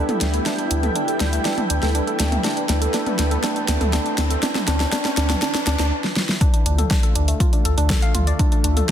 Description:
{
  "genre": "melodic techno",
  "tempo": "121 BPM",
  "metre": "4/4",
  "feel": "straight",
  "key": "unclear",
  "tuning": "A4 = 440 Hz",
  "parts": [
    { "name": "lush unison pad", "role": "sustained chords", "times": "0.0-8.9 s", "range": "D3 to F4", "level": "-31 LUFS", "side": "equal", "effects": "chorus, sidechain pumping" },
    { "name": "woody wave-folded pluck", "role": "arpeggios", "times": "0.0-8.9 s", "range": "A3 to F5", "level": "-26 LUFS", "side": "right 1 dB", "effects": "chorus, sidechain pumping, ping-pong delay" },
    { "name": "round analog bass", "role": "bass", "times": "0.0-8.8 s", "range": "D2", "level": "-21 LUFS", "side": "equal", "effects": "sidechain pumping" },
    { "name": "riser", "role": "sound effects", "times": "0.6-5.9 s", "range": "none", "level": "-30 LUFS", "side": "right 2 dB", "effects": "none" },
    { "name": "granular cloud pad", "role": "texture", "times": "0.0-5.9 s", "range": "E4 to G5", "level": "-28 LUFS", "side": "equal", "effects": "built-in reverb, sidechain pumping" },
    { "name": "deep house drum kit", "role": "drums", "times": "0.1-8.9 s", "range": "hi-hat, snare drum, toms", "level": "-24 LUFS", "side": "equal", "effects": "overdrive" },
    { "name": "electronic kick drum", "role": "drums", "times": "6.4-8.9 s", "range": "none", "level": "-19 LUFS", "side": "equal", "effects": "overdrive" }
  ],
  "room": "light reverb",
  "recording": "dense, heavily limited modern master",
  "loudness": "-18 LUFS",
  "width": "side -10 dB against mid",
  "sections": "0.0-6.4 A section; 6.4-8.9 B section",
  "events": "build-up 0.0-6.4; drum fill 0.0-5.9, 6.0-6.4; filter sweep on synth pluck 0.0-6.4; riser 0.6-5.9; drop 6.4-8.9",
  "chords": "0.0 Em/D; 6.4 Dm"
}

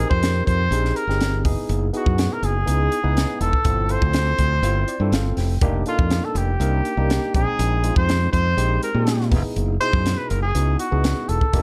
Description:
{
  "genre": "electric jazz fusion",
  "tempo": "122 BPM",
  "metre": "4/4",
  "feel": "straight",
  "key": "unclear",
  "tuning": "A4 = 440 Hz",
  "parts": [
    { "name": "mellow trumpet", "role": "melody", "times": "0.0-11.6 s", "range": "F4 to C5", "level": "-27 LUFS", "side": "equal", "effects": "plate reverb" },
    { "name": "barky tine electric piano", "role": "accompaniment", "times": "0.0-11.6 s", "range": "Cb3 to G5", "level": "-30 LUFS", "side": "equal", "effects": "overdrive, subtle chorus, plate reverb" },
    { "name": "modern bright fingered electric bass", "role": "bass", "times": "0.0-11.6 s", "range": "Fb1 to Bb2", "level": "-23 LUFS", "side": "equal", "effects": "none" },
    { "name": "crisp fusion drum kit", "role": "drums", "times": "0.1-11.6 s", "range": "hi-hat, kick drum, snare drum", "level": "-26 LUFS", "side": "equal", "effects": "none" }
  ],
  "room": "light reverb",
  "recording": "none",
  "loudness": "-21 LUFS",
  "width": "mono",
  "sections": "0.0-11.6 A section",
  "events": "tine electric piano fill 4.6-5.6",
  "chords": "0.0 Bb13sus4; 1.4 Gb13sus4; 3.7 G13sus4; 5.6 F13sus4; 7.3 Bb13sus4; 9.3 Gb13sus4"
}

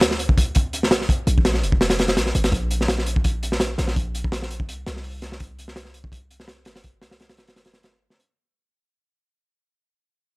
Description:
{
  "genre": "drum and bass, jungle",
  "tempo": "167 BPM",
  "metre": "4/4",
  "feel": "swing 53% on 16ths",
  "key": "unclear",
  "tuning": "A4 = 440 Hz",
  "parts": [
    { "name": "warm 808-style bass", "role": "bass", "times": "0.0-8.1 s", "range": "F1 to D2", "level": "-26 LUFS", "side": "equal", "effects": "none" },
    { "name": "crunchy breakbeat drum kit", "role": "drums", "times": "0.0-8.3 s", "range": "hi-hat, kick drum, snare drum", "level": "-20 LUFS", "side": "equal", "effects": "none" }
  ],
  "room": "little or no reverb",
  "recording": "dry, gritty hardware recording",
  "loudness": "-19 LUFS",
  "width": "side -26 dB against mid",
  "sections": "0.0-8.3 A section",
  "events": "fade-out 0.0-8.3",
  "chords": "none"
}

